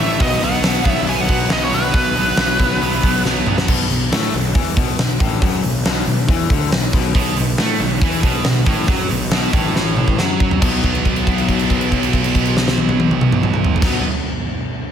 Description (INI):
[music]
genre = hard rock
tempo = 138 BPM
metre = 4/4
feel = straight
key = unclear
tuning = A4 = 441 Hz
[part]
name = nasal lead guitar with a parked wah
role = melody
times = 0.0-3.2 s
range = B4 to G#5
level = -20 LUFS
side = right 1 dB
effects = overdrive
[part]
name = overdriven semi-hollow guitar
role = riff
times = 0.0-14.0 s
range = A2 to B3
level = -23 LUFS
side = left 8 dB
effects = slapback echo
[part]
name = scooped high-gain guitar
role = riff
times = 0.0-3.7, 7.2-14.0 s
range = A2 to B3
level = -22 LUFS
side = right 9 dB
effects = distortion, slapback echo
[part]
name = fuzz picked electric bass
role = bass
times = 0.0-14.0 s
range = A1 to A2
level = -22 LUFS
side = equal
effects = overdrive
[part]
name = huge arena drum kit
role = drums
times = 0.2-13.9 s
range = crash cymbal, hi-hat, kick drum, snare drum, toms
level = -17 LUFS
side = equal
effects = none
[sound]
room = light reverb, small room ambience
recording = none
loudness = -14 LUFS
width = side -8 dB against mid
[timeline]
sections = 0.0-3.7 A section; 3.7-10.6 B section; 10.6-14.1 C section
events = drum fill 3.3-3.7, 9.8-10.6; held note 10.6-13.8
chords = 0.2 B5